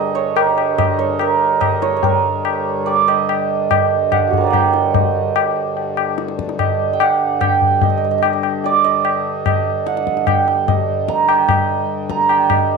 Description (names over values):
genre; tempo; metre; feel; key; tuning
indian classical, Hindustani; 146 BPM; 7/4; straight; G raga todi; A4 = 439 Hz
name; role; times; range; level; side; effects
santur; melody; 0.0-12.8 s; F#4 to Bb5; -16 LUFS; right 10 dB; none
pedal harmonium; drone; 0.0-12.8 s; G2 to D3; -25 LUFS; left 5 dB; none
tabla; percussion; 0.4-12.7 s; none; -19 LUFS; left 10 dB; none
room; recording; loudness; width
light reverb, small room ambience; 1960s-style stereo with parts hard left and right; -14 LUFS; side -4 dB against mid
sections
0.0-2.0 A section; 2.0-12.8 B section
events
speeding up 0.0-12.8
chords
none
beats
0.36 0.78 1.20 1.61 | 2.03 2.45 2.87 3.28 3.70 4.11 4.53 | 4.94 5.36 5.77 6.18 6.59 7.00 7.42 | 7.83 8.23 8.64 9.05 9.46 9.87 10.28 | 10.68 11.09 11.49 11.90 12.30 12.70